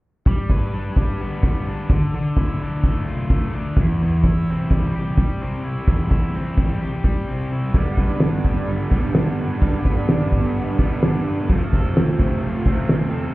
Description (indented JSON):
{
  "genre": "indie rock",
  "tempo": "128 BPM",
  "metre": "4/4",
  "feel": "straight",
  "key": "G mixolydian",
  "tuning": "A4 = 441 Hz",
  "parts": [
    { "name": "scooped high-gain guitar", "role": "riff", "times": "0.3-13.3 s", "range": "E2 to B4", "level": "-23 LUFS", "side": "left 1 dB", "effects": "distortion" },
    { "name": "loose indie drum kit", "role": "drums", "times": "0.3-13.0 s", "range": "hi-hat, kick drum, snare drum", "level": "-19 LUFS", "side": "equal", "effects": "none" },
    { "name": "cranked stack guitar", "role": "riff", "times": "7.8-13.3 s", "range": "F2 to D4", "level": "-23 LUFS", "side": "right 3 dB", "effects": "overdrive, ensemble chorus, tape echo" }
  ],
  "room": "light reverb",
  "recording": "heard muffled through a wall, club reverb, EQ",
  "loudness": "-18 LUFS",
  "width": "side -19 dB against mid",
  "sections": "0.3-13.3 A section",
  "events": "none",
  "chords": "0.3 G; 1.9 Dmadd9; 3.8 C/E; 7.8 G; 11.5 F"
}